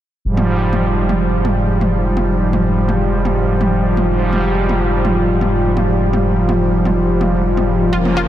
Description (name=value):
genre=melodic techno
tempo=125 BPM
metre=4/4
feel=straight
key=F minor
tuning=A4 = 440 Hz
part: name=warm analog pad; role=sustained chords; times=0.2-8.3 s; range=F3 to Bb4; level=-21 LUFS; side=left 2 dB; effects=lush chorus
part: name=brassy analog pad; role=stabs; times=0.2-8.3 s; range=Ab2 to Bb3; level=-16 LUFS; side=right 2 dB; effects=chorus, analog delay
part: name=round analog bass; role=bass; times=0.2-8.3 s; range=F1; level=-20 LUFS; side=equal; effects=none
part: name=electronic toms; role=drums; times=0.4-8.1 s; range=none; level=-24 LUFS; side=left 1 dB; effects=overdrive
part: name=analog pluck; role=arpeggios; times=7.9-8.3 s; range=F4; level=-20 LUFS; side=left 1 dB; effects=chorus, analog delay
room=moderate huge ambient reverb, RT60 7.1 s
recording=dreamy mix soaked in reverb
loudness=-13 LUFS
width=side -12 dB against mid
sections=0.2-8.3 A section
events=filter sweep on analog synth pad 0.2-8.3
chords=0.2 Fmadd9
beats=| 0.25 0.73 1.21 1.69 | 2.17 2.65 3.13 3.61 | 4.09 4.57 5.05 5.53 | 6.01 6.49 6.97 7.45 | 7.93